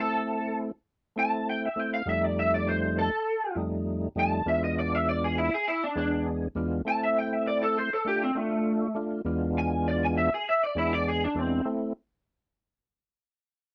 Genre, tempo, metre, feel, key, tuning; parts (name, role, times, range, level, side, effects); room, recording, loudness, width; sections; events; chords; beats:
blues; 100 BPM; 4/4; straight; A minor; A4 = 440 Hz
electric guitar through a small old amp; melody; 0.0-11.7 s; A3 to A5; -29 LUFS; equal; ensemble chorus, slapback echo
percussive tonewheel organ; accompaniment; 0.0-11.9 s; E2 to G#4; -31 LUFS; equal; overdrive, chorus vibrato, slow rotary speaker
light reverb; dry, close 1970s-style studio recording; -28 LUFS; mono
0.0-11.7 A section; 11.7-13.7 B section
clean electric guitar solo 0.0-11.7
0.0 Am; 2.1 F7; 4.5 E7b9; 6.9 Am; 8.1 Dm; 9.3 E7b9; 11.7 Am
0.27 0.87 1.47 | 2.06 2.66 3.26 3.86 | 4.46 5.06 5.66 6.26 | 6.86 7.46 8.05 8.65 | 9.25 9.85 10.45 11.05 | 11.65